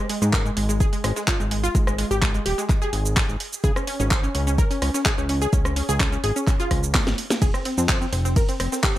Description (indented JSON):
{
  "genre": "progressive house",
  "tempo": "127 BPM",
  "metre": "4/4",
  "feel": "straight",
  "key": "unclear",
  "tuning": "A4 = 440 Hz",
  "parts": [
    { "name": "wide unison pluck", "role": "arpeggios", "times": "0.0-9.0 s", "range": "Ab3 to C5", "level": "-26 LUFS", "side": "equal", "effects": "sidechain pumping, dub echo" },
    { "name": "breakbeat sampler-style drum kit", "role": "drums", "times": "0.1-9.0 s", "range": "hi-hat, snare drum", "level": "-37 LUFS", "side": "right 1 dB", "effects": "none" },
    { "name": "house drum kit", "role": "drums", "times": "0.1-9.0 s", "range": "handclaps, hi-hat, ride cymbal, rim click, shaker, snare drum", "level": "-26 LUFS", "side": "equal", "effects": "none" },
    { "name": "fat analog bass", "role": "bass", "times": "0.2-9.0 s", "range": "Eb1 to Ab2", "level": "-24 LUFS", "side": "equal", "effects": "sidechain pumping" },
    { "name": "electronic kick drum", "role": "drums", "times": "0.3-8.9 s", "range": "none", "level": "-22 LUFS", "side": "equal", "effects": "none" }
  ],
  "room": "little or no reverb",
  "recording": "none",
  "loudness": "-20 LUFS",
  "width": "side -14 dB against mid",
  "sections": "0.0-9.0 A section",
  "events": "drum fill 6.9-7.4",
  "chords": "0.0 Ab5; 3.6 Db; 7.4 F5"
}